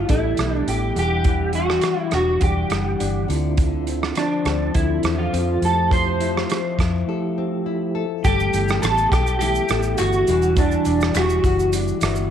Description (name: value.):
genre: indie pop, bedroom pop.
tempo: 103 BPM.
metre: 4/4.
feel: straight.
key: G mixolydian.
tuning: A4 = 440 Hz.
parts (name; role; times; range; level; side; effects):
electric guitar at the edge of break-up; melody; 0.0-11.7 s; D4 to C5; -22 LUFS; right 1 dB; ensemble chorus, slapback echo.
nylon-string guitar; accompaniment; 0.0-12.3 s; D3 to A4; -26 LUFS; left 11 dB; lush chorus, warbly pitch drift.
vintage muted fingered electric bass; bass; 0.0-12.3 s; E1 to F2; -24 LUFS; equal; none.
mellow tonewheel organ; accompaniment; 0.1-12.3 s; E3 to F#5; -28 LUFS; right 10 dB; fast rotary speaker, cassette tape.
loose indie drum kit; drums; 0.1-12.3 s; hi-hat, kick drum, rim click, shaker; -24 LUFS; right 1 dB; none.
group handclap; percussion; 8.8-11.3 s; none; -34 LUFS; left 12 dB; none.
room: moderate spring reverb, RT60 2.1 s.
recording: 1960s-style stereo with parts hard left and right.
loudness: -18 LUFS.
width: side -9 dB against mid.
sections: 0.0-8.2 A section; 8.2-12.3 B section.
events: break 7.1-8.2; tonewheel organ fill 11.7-12.3.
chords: 0.0 G69; 1.0 Em9; 3.3 Dm9; 5.6 Fmaj9; 8.2 G69; 10.3 Em9.